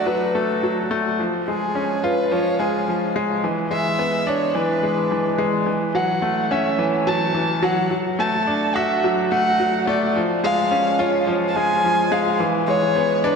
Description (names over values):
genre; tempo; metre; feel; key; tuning
electronica; 107 BPM; 4/4; straight; F# minor; A4 = 440 Hz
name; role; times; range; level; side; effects
dark violin; melody; 0.0-13.4 s; G#4 to A5; -22 LUFS; equal; low-pass filter, shimmer reverb
bright grand piano; riff; 0.0-13.4 s; E3 to F#4; -20 LUFS; equal; shimmer reverb
room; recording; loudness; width
wet concert hall reverb, RT60 2.0 s; none; -18 LUFS; side -5 dB against mid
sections
0.0-5.7 A section; 5.7-13.4 B section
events
build-up 5.7-13.4; filter sweep on violin 5.7-13.4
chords
0.0 D; 1.2 C#; 3.4 E7; 5.7 F#m7; 7.9 D; 10.2 C#; 12.4 E7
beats
0.07 0.63 | 1.19 1.75 2.31 2.87 | 3.43 3.99 4.55 5.11 | 5.67 6.23 6.79 7.36 | 7.92 8.48 9.04 9.60 | 10.16 10.72 11.28 11.84 | 12.40 12.96